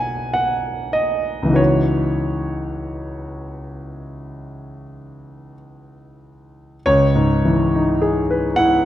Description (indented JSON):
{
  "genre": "classical, impressionist solo piano",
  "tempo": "44-55 BPM",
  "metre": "4/4",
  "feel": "rubato",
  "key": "C# minor",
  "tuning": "A4 = 440 Hz",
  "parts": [
    { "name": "clear concert grand piano", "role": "solo", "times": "0.0-8.8 s", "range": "B1 to B5", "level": "-18 LUFS", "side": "equal", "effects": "none" }
  ],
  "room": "moderate concert hall reverb, RT60 1.9 s",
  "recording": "none",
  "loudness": "-16 LUFS",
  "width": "side -12 dB against mid",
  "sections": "0.0-6.9 A section; 6.9-8.8 A section",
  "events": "none",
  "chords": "0.0 Badd9; 1.6 C#m11; 6.9 C#m9"
}